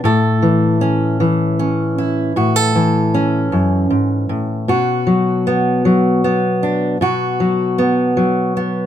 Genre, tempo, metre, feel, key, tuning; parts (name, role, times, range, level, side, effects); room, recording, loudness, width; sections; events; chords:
acoustic folk duo or small band; 52 BPM (dotted quarters); 6/8; straight; A4 = 441 Hz
fingerpicked steel-string acoustic guitar; solo; 0.0-8.9 s; F#2 to A4; -14 LUFS; left 1 dB
light reverb; close, detailed microphones; -14 LUFS; side -10 dB against mid
0.0-8.9 A section
0.0 A; 4.7 B5